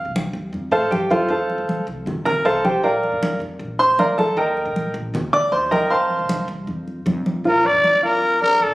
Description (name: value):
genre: latin, Cuban son and guajira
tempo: 156 BPM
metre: 4/4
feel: straight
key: Bb major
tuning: A4 = 435 Hz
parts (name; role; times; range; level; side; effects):
- clear baby grand piano; arpeggios; 0.0-8.7 s; F3 to D6; -19 LUFS; right 1 dB; none
- upright bass; bass; 0.0-8.7 s; Bb1 to A2; -32 LUFS; equal; none
- congas; percussion; 0.2-8.7 s; none; -26 LUFS; equal; none
- growling trumpet; melody; 7.5-8.7 s; A4 to D5; -15 LUFS; left 1 dB; none
room: moderate large studio reverb, RT60 1.4 s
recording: recorded on a phone in the room, studio ambience, compression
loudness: -17 LUFS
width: side -18 dB against mid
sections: 0.0-7.4 A section; 7.4-8.7 B section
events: grand piano solo 0.0-7.4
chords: 0.0 F; 1.3 Fadd9; 2.8 Bb; 4.4 Eb; 5.9 F; 7.4 Bb